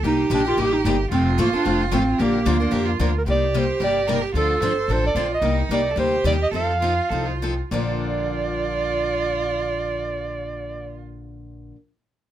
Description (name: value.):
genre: acoustic string swing (jazz manouche).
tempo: 189-223 BPM.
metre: 4/4.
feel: swing 55% on 8ths.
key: Bb major.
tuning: A4 = 440 Hz.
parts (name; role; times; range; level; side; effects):
rich violin; second line; 0.0-11.0 s; Eb4 to C5; -27 LUFS; right 6 dB; none.
picked steel-string acoustic guitar; accompaniment; 0.0-11.8 s; Bb2 to Bb4; -26 LUFS; left 4 dB; none.
upright bass; bass; 0.0-11.7 s; F1 to F2; -26 LUFS; equal; none.
mellow clarinet; melody; 0.1-11.0 s; Bb3 to F5; -23 LUFS; right 2 dB; none.
room: moderate studio reverb, RT60 0.5 s.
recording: close, detailed microphones.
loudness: -19 LUFS.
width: side -11 dB against mid.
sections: 0.0-3.3 A section; 3.3-7.7 B section; 7.7-10.3 C section.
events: slowing down 5.4-7.7.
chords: 0.0 Cm7; 1.1 F; 2.2 Bb; 3.3 Cm9; 4.3 Dm7; 5.4 Cm9; 6.5 F7; 7.7 Bbmaj7.